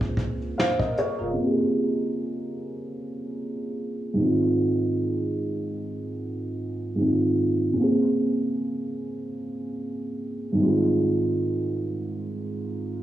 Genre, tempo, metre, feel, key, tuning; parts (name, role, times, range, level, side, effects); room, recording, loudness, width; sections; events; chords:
lo-fi hip hop; 75 BPM; 4/4; swing 55% on 16ths; Bb minor; A4 = 440 Hz
felt-muted upright piano; accompaniment; 0.0-13.0 s; Ab2 to F5; -24 LUFS; right 1 dB; cassette tape, low-pass filter
saturated sub bass; bass; 0.0-1.4 s; F1 to Db2; -33 LUFS; equal
vintage brush drum kit; drums; 0.0-1.2 s; hi-hat, kick drum, snare drum; -27 LUFS; equal
moderate spring reverb, RT60 2.4 s; worn, warbling old tape, cassette tape, warbly pitch drift, low-pass filter, small room ambience; -23 LUFS; side -13 dB against mid
0.0-1.4 A section; 1.4-13.0 B section
0.0 Bbm9; 4.2 Fm7/Ab; 7.8 Bbm9; 10.6 Fm7/Ab